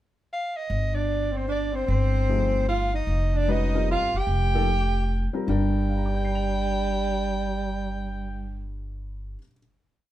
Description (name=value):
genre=modal jazz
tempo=150 BPM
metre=3/4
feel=swing 64% on 8ths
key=G minor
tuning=A4 = 441 Hz
part: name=breathy soprano saxophone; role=melody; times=0.3-8.6 s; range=C5 to G5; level=-30 LUFS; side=equal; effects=none
part: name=upright bass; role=bass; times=0.7-9.3 s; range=F1 to G1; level=-26 LUFS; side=equal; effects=none
part: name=breathy tenor saxophone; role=second line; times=0.9-8.6 s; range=G3 to G4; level=-29 LUFS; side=right 4 dB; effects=none
part: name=dark baby grand piano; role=accompaniment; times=2.3-9.6 s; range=G2 to F7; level=-30 LUFS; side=left 3 dB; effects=none
room=light reverb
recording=band playing live in one room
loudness=-23 LUFS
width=side -13 dB against mid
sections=0.0-0.7 pickup bar; 0.7-5.5 A section; 5.5-7.9 final chord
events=none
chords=0.0 N.C.; 0.7 G9sus4; 3.1 F9sus4; 5.5 Gm